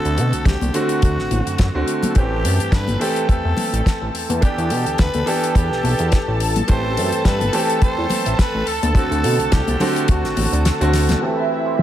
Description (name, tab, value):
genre	nu-disco, nu disco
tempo	106 BPM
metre	4/4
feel	swing 56% on 16ths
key	A dorian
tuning	A4 = 442 Hz
part	raspy tenor saxophone	melody	0.0-10.9 s	F#4 to C5	-26 LUFS	equal	ping-pong delay
part	clear concert grand piano	accompaniment	0.0-11.8 s	D3 to G4	-22 LUFS	right 1 dB	low-pass filter, diffuse ambient delay
part	chorused synth bass	bass	0.1-11.2 s	G1 to B2	-21 LUFS	equal	none
part	damped 70s drum kit	drums	0.1-11.8 s	hi-hat, snare drum	-26 LUFS	left 2 dB	low-pass filter on hats, low-pass filter on snare, low-pass filter on room
part	kick drum	drums	0.5-10.2 s	none	-16 LUFS	equal	none
part	congas	percussion	0.6-11.2 s	none	-26 LUFS	left 2 dB	none
part	lush unison pad	sustained chords	2.2-11.8 s	E4 to A5	-25 LUFS	right 1 dB	chorus, sidechain pumping
part	electric guitar with an envelope filter	riff	11.2-11.8 s	C4 to C5	-31 LUFS	right 3 dB	ensemble chorus, low-pass filter
room	moderate plate reverb, RT60 1.4 s, studio reverb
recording	dreamy mix soaked in reverb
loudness	-16 LUFS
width	side -12 dB against mid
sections	0.0-11.2 A section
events	kick drops out 10.7-11.2; drum fill 10.9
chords	0.0 D7; 2.2 Am7; 4.4 Em7; 6.4 Am7; 8.7 D7; 11.2 Am7